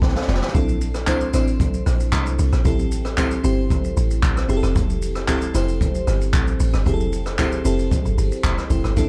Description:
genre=amapiano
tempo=114 BPM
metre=4/4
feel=straight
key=unclear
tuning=A4 = 440 Hz
part: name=crystalline FM electric piano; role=accompaniment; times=0.0-9.1 s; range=C4 to A5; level=-27 LUFS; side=equal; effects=chorus
part: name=deep log drum bass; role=bass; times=0.0-9.1 s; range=F1 to C2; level=-23 LUFS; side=equal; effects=none
part: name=jazz brush drum kit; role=drums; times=0.0-9.1 s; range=handclaps, hi-hat, kick drum, rim click, shaker, snare drum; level=-25 LUFS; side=equal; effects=none
room=studio ambience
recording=dark, warm production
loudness=-20 LUFS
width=mono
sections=0.0-9.1 A section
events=drum fill 0.0-0.5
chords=0.0 Fmaj9; 0.5 Bbmaj9#11; 2.7 Am7; 4.5 Fmaj9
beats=0.02 | 0.55 1.07 1.60 2.13 | 2.65 3.18 3.71 4.23 | 4.76 5.29 5.81 6.34 | 6.86 7.39 7.92 8.44 | 8.97

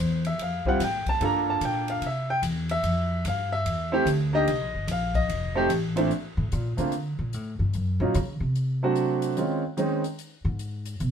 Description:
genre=jazz piano trio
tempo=147 BPM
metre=4/4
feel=swing 64% on 8ths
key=F major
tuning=A4 = 440 Hz
part: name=clear baby grand piano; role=melody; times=0.0-10.0 s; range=Bb2 to Bb5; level=-25 LUFS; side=right 1 dB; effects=none
part: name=upright bass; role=bass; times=0.0-11.1 s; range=F1 to D3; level=-27 LUFS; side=left 1 dB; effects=none
part: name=swinging big-band drum kit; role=drums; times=0.2-11.1 s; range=hi-hat, kick drum, ride cymbal, snare drum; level=-35 LUFS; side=left 2 dB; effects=none
room=moderate studio reverb, RT60 0.6 s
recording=band playing live in one room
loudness=-24 LUFS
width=side -8 dB against mid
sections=0.0-6.1 A section; 6.1-11.1 A section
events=grand piano solo 0.0-6.1; upright bass solo 6.1-11.1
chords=0.0 Dm11 (rootless); 1.2 Gm7; 2.0 C; 2.8 Fmaj7sus2; 4.5 Cm7; 5.3 F7; 6.1 Bbmaj7; 7.7 Ebm7 (rootless); 8.6 D7; 9.4 Dbmaj7(no3)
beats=0.40 0.81 | 1.21 1.62 2.03 2.44 | 2.85 3.25 3.66 4.07 | 4.48 4.89 5.29 5.70 | 6.11 6.52 6.93 7.33 | 7.74 8.15 8.56 8.96 | 9.37 9.78 10.19 10.59 | 11.00

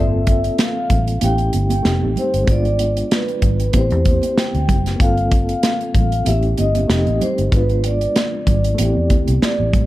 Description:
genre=lush 1970s-style soul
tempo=95 BPM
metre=4/4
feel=swing 54% on 16ths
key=unclear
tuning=A4 = 440 Hz
part: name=vibraphone with soft mallets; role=melody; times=0.0-9.9 s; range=B4 to G5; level=-22 LUFS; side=equal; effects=tape echo
part: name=overdriven reed electric piano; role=accompaniment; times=0.0-9.9 s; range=G#3 to A4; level=-24 LUFS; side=equal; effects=fast tremolo
part: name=vintage muted fingered electric bass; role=bass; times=0.0-9.9 s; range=F1 to A2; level=-19 LUFS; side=equal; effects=none
part: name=modern studio drum kit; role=drums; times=0.3-9.9 s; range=hi-hat, kick drum, snare drum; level=-19 LUFS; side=equal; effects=none
part: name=congas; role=percussion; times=0.3-9.9 s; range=none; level=-27 LUFS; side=right 6 dB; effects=none
room=studio ambience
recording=dark, warm production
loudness=-15 LUFS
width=side -16 dB against mid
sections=0.0-9.9 A section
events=none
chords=0.0 Gm11; 1.2 A7; 1.8 F9; 2.5 G#dim7; 3.7 Am7; 5.0 Gm11; 6.3 A7; 6.9 F9; 7.5 G#dim7; 8.8 Am7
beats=0.59 1.22 1.85 | 2.48 3.11 3.74 4.37 | 5.00 5.63 6.26 6.89 | 7.52 8.15 8.78 9.41

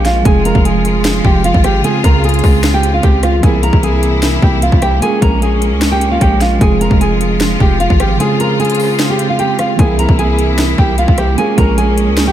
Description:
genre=hip hop, trap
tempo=151 BPM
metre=4/4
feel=half-time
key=F harmonic minor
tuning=A4 = 440 Hz
part: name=nylon-string guitar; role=melody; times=0.0-12.3 s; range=F4 to Bb5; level=-16 LUFS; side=right 1 dB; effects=low-pass filter, analog delay
part: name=mellow tine electric piano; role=accompaniment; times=0.0-12.3 s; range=Db3 to Bb4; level=-18 LUFS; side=right 3 dB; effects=medium stereo tremolo, low-pass filter
part: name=clear symphonic string section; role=sustained chords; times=0.0-12.3 s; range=C3 to F4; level=-19 LUFS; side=equal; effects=none
part: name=hard-hitting 808-style bass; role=bass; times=0.0-12.3 s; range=F1 to Db2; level=-15 LUFS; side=equal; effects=none
part: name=trap drum kit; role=drums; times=0.1-12.3 s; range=hi-hat, kick drum, rim click, snare drum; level=-14 LUFS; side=equal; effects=none
room=light reverb, digital ambience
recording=none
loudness=-10 LUFS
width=side -11 dB against mid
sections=0.0-3.4 A section; 3.4-12.3 A section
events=kick muted 8.2-9.8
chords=0.3 Fmadd9; 1.8 Dbmaj7; 3.4 C7; 5.0 Bbm7; 6.6 Fmadd9; 8.2 Dbmaj7; 9.8 C7; 11.4 Bbm7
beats=| 0.25 0.65 1.05 1.45 | 1.84 2.24 2.64 3.04 | 3.43 3.83 4.23 4.62 | 5.02 5.42 5.82 6.21 | 6.61 7.01 7.41 7.80 | 8.20 8.60 8.99 9.39 | 9.79 10.19 10.58 10.98 | 11.38 11.78 12.17

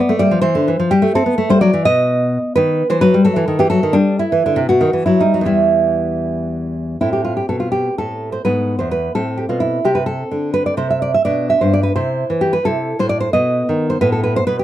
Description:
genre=classical, baroque-style dance for nylon-string guitar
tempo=86 BPM (dotted quarters)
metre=6/8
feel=rubato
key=E minor, A minor from 7.0 s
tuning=A4 = 440 Hz
part: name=nylon-string guitar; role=solo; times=0.0-14.6 s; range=E2 to E5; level=-14 LUFS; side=equal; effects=none
room=light reverb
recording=dry, close 1970s-style studio recording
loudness=-14 LUFS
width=side -12 dB against mid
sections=0.0-7.0 A section; 7.0-14.6 A section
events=none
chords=0.5 C; 1.2 Am; 1.9 N.C.; 2.6 B7b13/D#; 4.0 Em/G; 4.7 B; 5.5 Em; 7.0 Am; 8.5 E/G#; 9.2 Am; 9.9 Cmaj13; 11.3 G/B; 11.9 C; 12.6 Am/C; 13.3 B; 14.0 Amadd9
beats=0.47 | 1.16 1.86 | 2.57 3.27 | 3.98 4.71 | 5.49 6.27 | 7.03 7.76 | 8.47 9.17 | 9.86 10.56 | 11.26 11.95 | 12.64 13.33 | 14.02

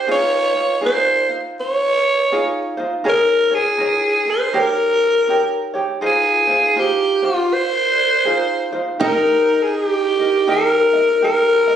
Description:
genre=Hawaiian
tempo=81 BPM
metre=4/4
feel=swing 62% on 8ths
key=Ab major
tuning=A4 = 440 Hz
part: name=growling alto saxophone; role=melody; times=0.0-11.8 s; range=F4 to Db5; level=-15 LUFS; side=equal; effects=plate reverb
part: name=ukulele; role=accompaniment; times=0.0-11.8 s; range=Eb4 to Eb5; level=-23 LUFS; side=right 1 dB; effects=none
part: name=fingerpicked old ladder-braced acoustic guitar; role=second line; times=9.0-11.8 s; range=Eb4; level=-25 LUFS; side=right 3 dB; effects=none
room=light reverb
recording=recorded on a phone in the room, studio reverb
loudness=-14 LUFS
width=side -9 dB against mid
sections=0.0-9.0 A section; 9.0-11.8 B section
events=none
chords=0.1 Dbmaj9; 3.1 Eb7sus4; 4.6 Eb7; 6.0 Ab6; 9.0 Eb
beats=| 0.09 0.83 1.58 2.32 | 3.06 3.81 4.55 5.29 | 6.04 6.78 7.52 8.26 | 9.01 9.75 10.49 11.23

